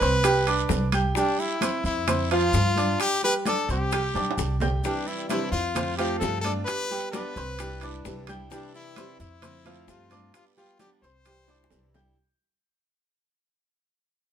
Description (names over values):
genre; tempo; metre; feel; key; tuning
latin, Cuban son and guajira; 131 BPM; 4/4; straight; C major; A4 = 440 Hz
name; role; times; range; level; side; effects
bright trumpet; melody; 0.0-11.9 s; D4 to C5; -27 LUFS; left 2 dB; none
bright baby grand piano; arpeggios; 0.0-12.1 s; F3 to G6; -29 LUFS; right 3 dB; none
upright bass; bass; 0.0-12.1 s; B1 to G2; -28 LUFS; equal; none
bongos; percussion; 0.0-12.1 s; none; -36 LUFS; left 7 dB; none
congas; percussion; 0.0-12.2 s; none; -34 LUFS; left 1 dB; none
guiro; percussion; 0.0-12.2 s; none; -41 LUFS; right 6 dB; none
maracas; percussion; 0.0-12.2 s; none; -41 LUFS; left 6 dB; none
timbales; percussion; 0.2-12.1 s; none; -33 LUFS; right 8 dB; none
picked steel-string acoustic guitar; accompaniment; 4.8-12.2 s; C3 to F4; -36 LUFS; left 1 dB; none
room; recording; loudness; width
moderate studio reverb, RT60 0.9 s; minimal, uncompressed stereo recording; -23 LUFS; side -9 dB against mid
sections
0.0-12.2 A section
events
fade-out 0.0-12.2; drum fill 4.2-4.8, 11.5-12.2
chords
0.2 Cadd9; 2.1 F5; 3.0 G5; 3.9 Cadd9; 5.8 F; 6.7 G7; 7.6 Cadd9; 9.4 F; 10.3 G7; 11.3 Cadd9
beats
0.24 0.70 | 1.16 1.62 2.08 2.54 | 3.00 3.46 3.92 4.38 | 4.84 5.30 5.76 6.22 | 6.67 7.13 7.59 8.05 | 8.51 8.97 9.43 9.88 | 10.34 10.80 11.26 11.71